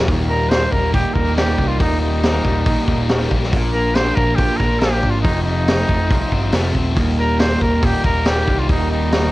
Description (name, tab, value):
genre	indie rock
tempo	139 BPM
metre	4/4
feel	straight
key	Eb major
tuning	A4 = 440 Hz
part	electric guitar through a small old amp	riff	0.0-9.3 s	Eb2 to F4	-24 LUFS	right 4 dB	wide subtle chorus, cassette tape
part	fuzz guitar	riff	0.0-9.3 s	Eb2 to F4	-24 LUFS	left 5 dB	distortion, cassette tape
part	overdriven picked electric bass	bass	0.0-9.3 s	Eb1 to C2	-20 LUFS	equal	none
part	vintage drum kit	drums	0.1-9.2 s	hi-hat, kick drum, snare drum	-19 LUFS	equal	cassette tape
part	breathy trumpet	melody	0.3-9.3 s	Eb4 to C5	-22 LUFS	equal	cassette tape
room	little or no reverb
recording	home recording on cassette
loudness	-15 LUFS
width	side -18 dB against mid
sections	0.1-9.3 A section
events	none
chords	0.1 Eb; 3.5 Bb; 5.2 F; 7.0 Eb